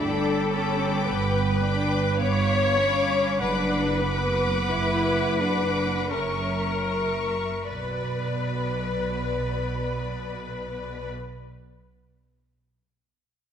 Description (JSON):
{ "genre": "classical, slow romantic movement for string orchestra", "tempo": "37-56 BPM", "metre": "3/4", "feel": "rubato", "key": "B minor", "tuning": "A4 = 440 Hz", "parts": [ { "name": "warm symphonic violin section", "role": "melody", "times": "0.0-11.1 s", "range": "B5 to D6", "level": "-35 LUFS", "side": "left 3 dB", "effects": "none" }, { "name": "dark symphonic violin section", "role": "second line", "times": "0.0-11.1 s", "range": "B4 to C#6", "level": "-34 LUFS", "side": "left 3 dB", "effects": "none" }, { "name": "clear symphonic viola section", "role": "accompaniment", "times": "0.0-11.1 s", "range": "A4 to C#5", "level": "-27 LUFS", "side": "left 2 dB", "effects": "none" }, { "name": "clear symphonic double bass section", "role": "bass", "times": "0.0-11.1 s", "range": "F#1 to B1", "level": "-28 LUFS", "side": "right 3 dB", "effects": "none" }, { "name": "rich chamber cello section", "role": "bass", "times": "0.0-11.1 s", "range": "B2 to E4", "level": "-31 LUFS", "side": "equal", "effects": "none" } ], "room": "moderate scoring stage reverb, RT60 1.6 s", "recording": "none", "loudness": "-23 LUFS", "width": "side -8 dB against mid", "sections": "0.0-7.7 A section; 7.7-12.4 B section", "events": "slowing down 0.0-7.7", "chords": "0.0 G; 2.2 G7; 3.4 Bm/F#; 6.1 F#7; 7.7 Bm" }